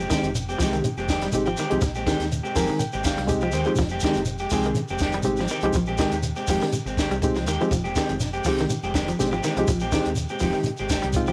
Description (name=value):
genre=afrobeat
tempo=122 BPM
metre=4/4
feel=swing 53% on 16ths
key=F minor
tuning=A4 = 440 Hz
part: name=electric guitar at the edge of break-up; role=arpeggios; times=0.0-11.3 s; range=Eb3 to G3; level=-31 LUFS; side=equal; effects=tremolo, cassette tape
part: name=electric guitar at the edge of break-up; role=stabs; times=0.0-11.3 s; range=Eb3 to G4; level=-31 LUFS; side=equal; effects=spring reverb, cassette tape, plate reverb
part: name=deep dub fingered electric bass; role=bass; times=0.0-11.3 s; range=F1 to Eb2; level=-34 LUFS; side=equal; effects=none
part: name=barky reed electric piano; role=accompaniment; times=0.1-11.3 s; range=Ab3 to Ab5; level=-28 LUFS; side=equal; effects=overdrive, cassette tape
part: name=compact cocktail drum kit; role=drums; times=0.1-11.3 s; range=hi-hat, kick drum, snare drum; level=-30 LUFS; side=equal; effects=cassette tape
part: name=shekere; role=percussion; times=0.1-11.3 s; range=none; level=-33 LUFS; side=equal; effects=none
room=light reverb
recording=home recording on cassette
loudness=-24 LUFS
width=mono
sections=0.0-11.3 A section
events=reed electric piano fill 2.3-3.8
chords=0.0 Fm9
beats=0.35 0.84 1.33 | 1.82 2.31 2.81 3.30 | 3.79 4.28 4.77 5.26 | 5.75 6.24 6.73 7.22 | 7.71 8.20 8.69 9.18 | 9.68 10.17 10.66 11.15